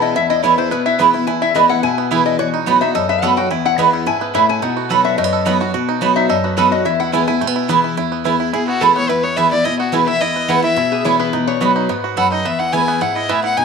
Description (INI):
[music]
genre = bluegrass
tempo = 215 BPM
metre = 4/4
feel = straight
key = E major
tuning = A4 = 441 Hz
[part]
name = lap resonator guitar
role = second line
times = 0.0-7.9, 10.9-12.1 s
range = F#4 to G#5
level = -19 LUFS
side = left 12 dB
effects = slapback echo
[part]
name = picked steel-string acoustic guitar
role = accompaniment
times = 0.0-13.6 s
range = E2 to F#4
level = -20 LUFS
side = left 3 dB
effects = none
[part]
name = bluegrass banjo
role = arpeggios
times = 0.0-13.6 s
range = E3 to A4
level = -22 LUFS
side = right 11 dB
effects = none
[part]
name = mandolin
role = stabs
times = 0.4-13.4 s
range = B3 to B5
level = -17 LUFS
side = right 7 dB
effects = none
[part]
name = rich fiddle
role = melody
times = 8.5-13.6 s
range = F#4 to G#5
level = -18 LUFS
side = left 4 dB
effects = none
[sound]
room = moderate plate reverb, RT60 2.5 s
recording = 1960s-style stereo with parts hard left and right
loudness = -13 LUFS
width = side -5 dB against mid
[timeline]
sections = 0.0-8.0 A section; 8.0-13.6 B section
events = resonator guitar played with a steel bar solo 0.0-8.0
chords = 0.0 E; 2.4 B; 3.5 E; 4.6 B; 6.9 E; 11.3 B; 12.5 E